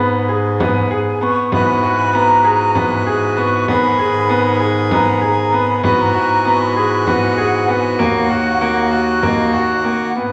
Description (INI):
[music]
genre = contemporary instrumental, chamber music in an uneven meter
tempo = 195 BPM (eighths)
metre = 7/8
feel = straight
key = G# minor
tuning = A4 = 440 Hz
[part]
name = breathy mellow jazz flute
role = melody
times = 0.0-10.3 s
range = D#5 to C#6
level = -21 LUFS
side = equal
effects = none
[part]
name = bright grand piano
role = arpeggios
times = 0.0-10.3 s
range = A#3 to G#4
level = -20 LUFS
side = equal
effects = none
[part]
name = clear bass clarinet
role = bass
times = 0.0-10.3 s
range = D#2 to G#2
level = -23 LUFS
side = equal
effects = none
[part]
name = frame drum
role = percussion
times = 0.6-9.5 s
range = none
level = -27 LUFS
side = equal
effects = none
[part]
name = accordion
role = sustained chords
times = 1.5-10.1 s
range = D#3 to G#4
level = -23 LUFS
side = equal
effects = none
[sound]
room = wet recital hall reverb, RT60 1.4 s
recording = none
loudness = -15 LUFS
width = mono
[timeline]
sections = 0.0-10.2 A section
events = none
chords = 0.0 G#m; 1.5 Eadd9/G#; 3.7 G#m; 5.8 Eadd9/G#; 8.0 D#m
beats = 0.29 0.60 0.91 1.21 | 1.52 1.83 2.14 2.45 2.75 3.06 3.37 | 3.68 3.99 4.29 4.60 4.91 5.22 5.53 | 5.83 6.14 6.45 6.76 7.07 7.38 7.68 | 7.99 8.30 8.61 8.92 9.22 9.53 9.84 | 10.15